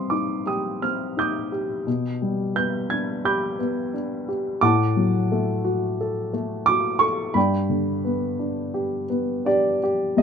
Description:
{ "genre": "classical, lyrical solo piano", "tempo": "87 BPM", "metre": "4/4", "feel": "rubato", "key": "unclear", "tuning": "A4 = 440 Hz", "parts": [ { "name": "dark baby grand piano", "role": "solo", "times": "0.0-10.2 s", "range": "C2 to Ab6", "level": "-21 LUFS", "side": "equal", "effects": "none" } ], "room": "light reverb", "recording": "dark, warm production", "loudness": "-21 LUFS", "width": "side -7 dB against mid", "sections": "0.0-10.2 A section", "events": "none", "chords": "0.0 Cmadd9; 1.9 G/B; 4.6 D/A; 7.4 G" }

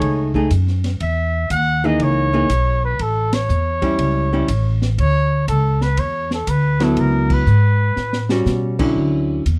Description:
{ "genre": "jazz, small-group swing and bop", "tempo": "121 BPM", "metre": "4/4", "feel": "swing 67% on 8ths", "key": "unclear", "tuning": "A4 = 436 Hz", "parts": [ { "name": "warm trumpet", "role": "melody", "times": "0.0-8.3 s", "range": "A4 to F#5", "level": "-24 LUFS", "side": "equal", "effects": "none" }, { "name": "archtop guitar, miked and amplified", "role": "accompaniment", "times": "0.0-9.4 s", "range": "D3 to G#4", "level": "-21 LUFS", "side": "equal", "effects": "none" }, { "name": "upright bass", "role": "bass", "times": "0.0-9.6 s", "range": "A1 to B2", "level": "-20 LUFS", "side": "equal", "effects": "none" }, { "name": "open jazz drum kit", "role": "drums", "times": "0.0-9.6 s", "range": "crash cymbal, hi-hat, kick drum, ride cymbal, snare drum", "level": "-28 LUFS", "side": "equal", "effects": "none" } ], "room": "little or no reverb", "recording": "dry, close 1970s-style studio recording", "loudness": "-18 LUFS", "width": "mono", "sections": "0.0-9.0 A section", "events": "band accent 3.2, 7.2; drum fill 8.0-8.5", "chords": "0.0 B13 (rootless); 1.0 Emaj7#11; 3.0 A7; 5.0 Dmaj7sus2; 7.0 C#m7; 8.0 A13; 9.0 Dmaj9" }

